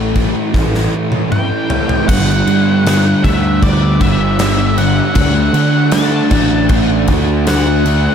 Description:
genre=rock, shoegaze and dream pop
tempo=78 BPM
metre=4/4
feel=straight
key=unclear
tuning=A4 = 440 Hz
part: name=octave-fuzz lead guitar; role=melody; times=0.0-8.1 s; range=D5 to A5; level=-20 LUFS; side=equal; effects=distortion, tape echo
part: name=thick fuzz guitar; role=riff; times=0.0-8.1 s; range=G2 to D4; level=-14 LUFS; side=right 1 dB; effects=distortion, analog chorus
part: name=fuzz fingered electric bass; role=bass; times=0.0-8.1 s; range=G1 to D3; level=-16 LUFS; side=equal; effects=overdrive
part: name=gated 80s drum kit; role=drums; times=0.2-8.0 s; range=crash cymbal, kick drum, snare drum, toms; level=-17 LUFS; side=equal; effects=none
room=moderate huge ambient reverb, RT60 8.9 s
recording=dreamy mix soaked in reverb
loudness=-11 LUFS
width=side -8 dB against mid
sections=0.0-2.1 A section; 2.1-8.1 B section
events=drum fill 0.5-2.1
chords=0.0 A5; 2.1 G5; 5.2 D

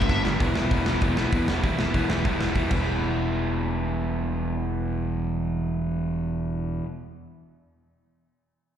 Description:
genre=punk rock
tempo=194 BPM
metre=4/4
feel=straight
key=E minor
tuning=A4 = 439 Hz
part: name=crunchy overdriven guitar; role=riff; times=0.0-6.8 s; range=G2 to E4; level=-28 LUFS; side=right 7 dB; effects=none
part: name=overdriven electric guitar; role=riff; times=0.0-6.9 s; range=E2 to G3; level=-30 LUFS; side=left 10 dB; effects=slapback echo
part: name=modern bright picked electric bass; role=bass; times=0.0-6.8 s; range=E1 to E2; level=-29 LUFS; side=equal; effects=none
part: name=big rock drum kit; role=drums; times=0.0-2.8 s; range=crash cymbal, hi-hat, kick drum, snare drum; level=-27 LUFS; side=equal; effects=none
room=light reverb, small room ambience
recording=live gig heard through the venue's PA, recital hall reverb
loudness=-23 LUFS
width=side -9 dB against mid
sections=0.4-2.9 A section; 2.9-5.3 B section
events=drum fill 0.1-0.4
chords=0.4 Em

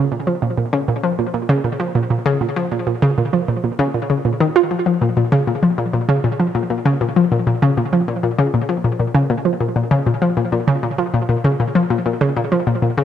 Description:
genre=ambient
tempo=98 BPM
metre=4/4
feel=straight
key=Bb minor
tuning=A4 = 442 Hz
part: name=analog pluck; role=solo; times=0.0-13.0 s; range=Bb2 to F4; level=-15 LUFS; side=equal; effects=chorus, tape echo
room=light reverb, digital ambience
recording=none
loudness=-15 LUFS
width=side -10 dB against mid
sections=0.0-13.0 A section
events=none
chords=none

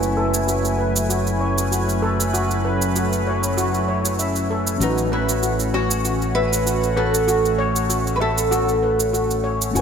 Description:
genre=sunset chillout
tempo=97 BPM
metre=4/4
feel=swing 54% on 16ths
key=A major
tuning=A4 = 440 Hz
part: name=mellow tine electric piano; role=accompaniment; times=0.0-9.8 s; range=E3 to G#5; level=-28 LUFS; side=equal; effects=auto-pan, ping-pong delay
part: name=lush unison pad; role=sustained chords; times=0.0-9.8 s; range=F#3 to G#5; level=-24 LUFS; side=equal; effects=chorus
part: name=steel pan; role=arpeggios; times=0.0-9.8 s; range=F#4 to E5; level=-26 LUFS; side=left 2 dB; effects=low-pass filter, ping-pong delay
part: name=modern bright fingered electric bass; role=bass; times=0.0-9.8 s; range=F#1 to A1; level=-24 LUFS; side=equal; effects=none
part: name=cabasa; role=drums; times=0.0-9.8 s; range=none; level=-27 LUFS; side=right 5 dB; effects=studio reverb
part: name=nylon-string guitar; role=melody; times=4.8-9.4 s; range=D#4 to B4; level=-22 LUFS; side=right 1 dB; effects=wide subtle chorus, ping-pong delay
room=wet lush hall reverb, RT60 2.0 s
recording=bright 1980s-style digital production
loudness=-18 LUFS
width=side -7 dB against mid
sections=0.0-9.8 A section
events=filter sweep on steel pan 0.0-9.8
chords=0.0 F#m11; 4.8 A69

